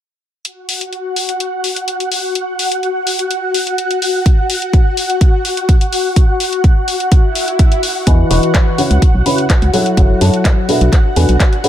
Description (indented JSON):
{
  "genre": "piano house",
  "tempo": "126 BPM",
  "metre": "4/4",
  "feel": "straight",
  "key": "unclear",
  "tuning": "A4 = 441 Hz",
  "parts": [
    { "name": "analog string pad", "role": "sustained chords", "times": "0.5-11.7 s", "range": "F#4 to F#5", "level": "-19 LUFS", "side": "left 2 dB", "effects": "ensemble chorus, sidechain pumping" },
    { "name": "house drum kit", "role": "drums", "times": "0.5-11.7 s", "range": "handclaps, hi-hat", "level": "-20 LUFS", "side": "left 2 dB", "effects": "none" },
    { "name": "electronic kick drum", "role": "drums", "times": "4.3-11.5 s", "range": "none", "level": "-10 LUFS", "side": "equal", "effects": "none" },
    { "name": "swell", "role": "sound effects", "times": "7.2-8.1 s", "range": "none", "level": "-24 LUFS", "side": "right 5 dB", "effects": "none" },
    { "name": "dark grand piano", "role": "riff", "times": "8.1-11.7 s", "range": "B2 to C#6", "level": "-15 LUFS", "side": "left 1 dB", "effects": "sidechain pumping, low-pass filter, digital delay" },
    { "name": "organ-like FM bass", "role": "bass", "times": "8.1-11.4 s", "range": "E1 to F#2", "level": "-12 LUFS", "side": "equal", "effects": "tube saturation, sidechain pumping" }
  ],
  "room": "little or no reverb",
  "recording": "none",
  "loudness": "-11 LUFS",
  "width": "side -11 dB against mid",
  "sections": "0.5-8.1 A section; 8.1-11.7 B section",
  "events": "swell 7.2-8.1",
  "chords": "0.5 N.C.; 8.1 Emaj7; 8.8 C#m7; 9.7 F#m7; 10.7 Bm7",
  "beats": "| 0.45 0.93 1.40 1.88 | 2.35 2.83 3.31 3.78 | 4.26 4.74 5.21 5.69 | 6.16 6.64 7.12 7.59 | 8.07 8.54 9.02 9.50 | 9.97 10.45 10.93 11.40"
}